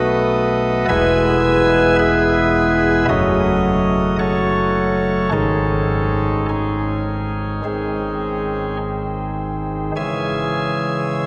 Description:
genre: classical, chorale-style piece for pipe organ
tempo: 53 BPM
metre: 4/4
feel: rubato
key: unclear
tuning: A4 = 440 Hz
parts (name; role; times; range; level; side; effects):
- chamber organ, cornet; solo; 0.0-11.3 s; E1 to G#5; -18 LUFS; equal; none
room: wet cathedral reverb, RT60 5.1 s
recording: recorded in a church or concert hall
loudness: -18 LUFS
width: mono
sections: 0.0-10.0 A section; 10.0-11.3 B section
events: none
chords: 0.0 B7; 0.9 E; 3.1 F#m; 5.3 G#sus4; 7.7 G#; 10.0 C#m

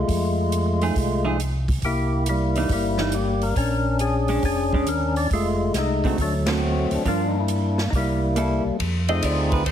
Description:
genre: soul jazz organ trio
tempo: 138 BPM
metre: 4/4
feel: swing 67% on 8ths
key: unclear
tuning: A4 = 436 Hz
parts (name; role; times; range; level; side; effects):
- percussive tonewheel organ; melody; 0.0-9.6 s; F#3 to D5; -23 LUFS; left 2 dB; slow rotary speaker
- mellow tonewheel organ; bass; 0.0-9.7 s; F1 to G2; -24 LUFS; equal; chorus vibrato, slow rotary speaker
- swinging big-band drum kit; drums; 0.1-9.7 s; hi-hat, kick drum, ride cymbal, snare drum; -28 LUFS; equal; none
- vintage hollow-body jazz guitar; accompaniment; 0.8-9.7 s; D3 to Eb5; -28 LUFS; right 5 dB; none
room: light reverb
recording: heavily compressed radio sound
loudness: -20 LUFS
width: side -10 dB against mid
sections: 0.0-8.8 A section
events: band accent 6.4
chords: 0.0 F7#9; 1.8 C7#9; 3.6 Bb7#9; 5.3 F7#9; 6.2 D7; 7.1 Gm7; 7.9 C6; 8.8 F7#9

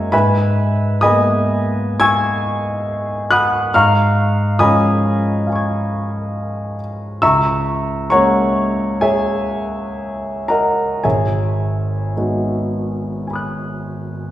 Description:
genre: classical, impressionist solo piano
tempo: 54-73 BPM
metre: 4/4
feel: rubato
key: G# minor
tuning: A4 = 437 Hz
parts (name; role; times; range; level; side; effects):
- warm grand piano; solo; 0.0-14.3 s; G#1 to G#6; -15 LUFS; equal; none
room: wet recital hall reverb, RT60 1.6 s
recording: heard from further back in the room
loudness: -15 LUFS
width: side -13 dB against mid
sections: 0.0-14.3 A section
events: none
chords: 0.1 G#madd9; 3.7 C#add9/G#; 7.2 C#m6; 11.0 G#m7

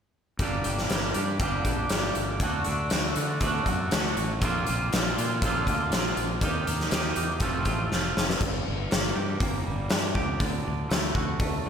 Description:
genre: quiet-loud alternative rock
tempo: 120 BPM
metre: 4/4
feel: straight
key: G minor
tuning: A4 = 439 Hz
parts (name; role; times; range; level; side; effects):
- twangy electric guitar; arpeggios; 0.4-11.7 s; F2 to G4; -30 LUFS; right 2 dB; lush chorus, digital delay, slapback echo
- fuzz fingered electric bass; bass; 0.4-11.7 s; F1 to D3; -31 LUFS; equal; overdrive
- big rock drum kit; drums; 0.4-11.5 s; crash cymbal, hi-hat, kick drum, snare drum; -27 LUFS; left 1 dB; none
room: moderate concert hall reverb, RT60 2.3 s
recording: big arena sound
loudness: -24 LUFS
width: side -7 dB against mid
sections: 0.4-8.4 A section; 8.4-11.7 B section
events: drum fill 7.9-8.4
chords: 0.4 Gm; 2.4 D; 4.4 Bbadd9; 6.4 Eb; 7.4 F; 8.4 Gm; 10.4 D

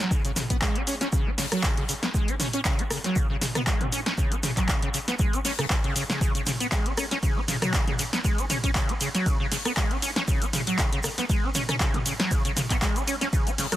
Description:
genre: acid house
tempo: 118 BPM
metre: 4/4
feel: swing 55% on 16ths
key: unclear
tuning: A4 = 441 Hz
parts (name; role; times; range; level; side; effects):
- acid bass, saw; riff; 0.0-13.8 s; C#3 to C#4; -29 LUFS; equal; overdrive, ensemble chorus, sidechain pumping, dub echo
- punchy analog drum machine; drums; 0.0-13.8 s; handclaps, hi-hat, ride cymbal, rim click, shaker, snare drum, toms; -28 LUFS; equal; none
- electronic kick drum; drums; 0.1-13.4 s; none; -26 LUFS; equal; none
- jazz brush drum kit; drums; 0.1-13.7 s; hi-hat, shaker, snare drum; -38 LUFS; left 1 dB; none
room: light reverb, small room ambience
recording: dense, heavily limited modern master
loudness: -23 LUFS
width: side -14 dB against mid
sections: 0.0-13.8 A section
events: none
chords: none

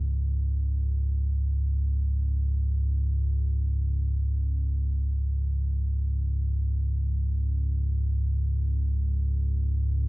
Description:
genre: ambient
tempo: free time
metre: none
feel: none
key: unclear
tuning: A4 = 440 Hz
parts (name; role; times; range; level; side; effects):
- deep rumbling drone; solo; 0.0-10.1 s; C#2 to G#2; -24 LUFS; equal; built-in reverb, diffuse ambient delay
room: little or no reverb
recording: cassette tape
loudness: -25 LUFS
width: side -22 dB against mid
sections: 0.1-10.1 A section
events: none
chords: 0.1 C#5

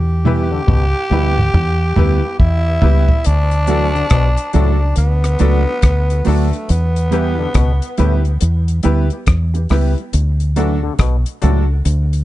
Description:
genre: roots reggae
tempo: 70 BPM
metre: 4/4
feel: swing 63% on 16ths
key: D major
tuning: A4 = 440 Hz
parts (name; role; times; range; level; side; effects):
- growling tenor saxophone; melody; 0.0-8.4 s; A3 to G4; -21 LUFS; equal; tape echo, plate reverb
- deep dub fingered electric bass; bass; 0.0-12.2 s; B1 to E2; -14 LUFS; equal; none
- mellow electric guitar; accompaniment; 0.2-11.6 s; F#3 to G4; -22 LUFS; right 6 dB; tape echo
- mellow clav; arpeggios; 0.2-11.6 s; A2 to E3; -25 LUFS; left 7 dB; auto-wah
- bright upright piano; stabs; 0.3-11.6 s; D4 to B4; -24 LUFS; left 4 dB; plate reverb
- damped 70s drum kit; drums; 0.3-12.2 s; hi-hat, kick drum, rim click, toms; -16 LUFS; equal; none
room: light reverb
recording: dark, warm production, nothing above 10.6 kHz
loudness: -13 LUFS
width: side -15 dB against mid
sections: 0.0-3.3 A section; 3.3-12.2 B section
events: drum fill 0.0-3.3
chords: 0.0 Em; 3.3 D; 6.7 Em; 10.1 D

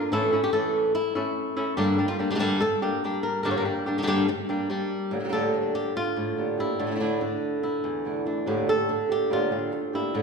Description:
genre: flamenco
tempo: 143 BPM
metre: 4/4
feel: straight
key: unclear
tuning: A4 = 440 Hz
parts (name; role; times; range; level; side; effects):
- flamenco guitar; melody; 0.0-10.2 s; E2 to C#5; -24 LUFS; equal; none
- flamenco guitar; stabs; 5.1-10.2 s; A2 to G4; -29 LUFS; right 2 dB; none
room: wet recital hall reverb, RT60 1.8 s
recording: recorded in a church or concert hall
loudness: -24 LUFS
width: side -5 dB against mid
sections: 0.0-5.1 A section; 5.1-10.2 B section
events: none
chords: 0.1 A; 1.8 Gm; 5.1 Bb6/A; 6.8 Asus4; 8.5 Gm/A

